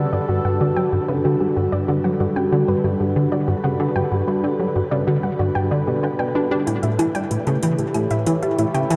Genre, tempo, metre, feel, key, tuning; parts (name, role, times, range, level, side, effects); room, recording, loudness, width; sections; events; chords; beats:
ambient, sequencer-driven space music; 94 BPM; 4/4; straight; G lydian; A4 = 440 Hz
sweeping resonant pad; sustained chords; 0.0-9.0 s; G3 to C#5; -25 LUFS; equal; chorus, phaser, shimmer reverb
soft round pluck; arpeggios; 0.0-9.0 s; E4 to G5; -28 LUFS; equal; chorus, cassette tape, delay, shimmer reverb
plucky analog bass; riff; 0.0-9.0 s; G2 to D4; -23 LUFS; equal; ensemble chorus, delay
electronic hi-hat and woodblock; percussion; 6.7-9.0 s; -36 LUFS; equal; delay
wet cathedral reverb, RT60 6.6 s; in a vast, echoing space; -20 LUFS; mono
0.0-9.0 A section
0.0 Gmaj7; 6.7 A7
0.29 0.93 | 1.56 2.20 2.84 3.48 | 4.12 4.75 5.39 6.03 | 6.67 7.31 7.95 8.59